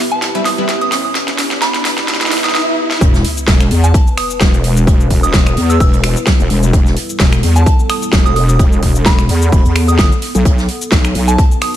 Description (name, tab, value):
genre	bass house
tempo	129 BPM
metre	4/4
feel	swing 55% on 16ths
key	E harmonic minor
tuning	A4 = 440 Hz
part	dark analog pad	sustained chords	0.0-11.8 s	F#3 to E5	-30 LUFS	equal	none
part	orchestra-hit-like synth stab	stabs	0.0-0.7 s	G3 to B4	-21 LUFS	left 1 dB	built-in reverb, sidechain pumping, dub echo
part	riser, swell and sub drop	sound effects	0.0-4.9 s	none	-21 LUFS	right 1 dB	none
part	warbly tape-like pad	texture	0.0-11.8 s	B3 to B4	-25 LUFS	equal	chorus, built-in reverb, sidechain pumping
part	soft synth bell	melody	0.1-11.8 s	A5 to E6	-20 LUFS	right 4 dB	chorus, dub echo
part	big-room dance drum kit	drums	0.1-11.8 s	finger snaps, hi-hat, shaker, snare drum	-18 LUFS	equal	overdrive, high-pass filter on snare, small room ambience, high-pass filter on hats, high-pass filter on perc
part	unplugged drum kit	drums	0.2-11.7 s	hi-hat, snare drum	-26 LUFS	right 2 dB	sidechain pumping on hats, high-pass filter on hats, small room ambience, high-pass filter on snare, high-pass filter on room
part	wobble bass	bass	3.0-11.4 s	E1 to E2	-13 LUFS	equal	chorus, overdrive, sidechain pumping
part	electronic kick drum	drums	3.0-11.5 s	none	-11 LUFS	equal	overdrive, small room ambience
room	little or no reverb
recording	none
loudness	-10 LUFS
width	side -12 dB against mid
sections	0.0-3.0 A section; 3.0-11.8 B section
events	build-up 0.0-3.0; drum fill 0.0-2.5, 2.5-3.0; riser 0.0-3.0; swell 2.1-3.0; drop 3.0-11.8; impact 3.0-4.9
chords	0.0 Em; 10.5 B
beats	0.22 0.69 | 1.15 1.62 2.08 2.55 | 3.01 3.48 3.94 4.41 | 4.87 5.34 5.80 6.27 | 6.73 7.20 7.66 8.13 | 8.59 9.06 9.52 9.99 | 10.45 10.92 11.38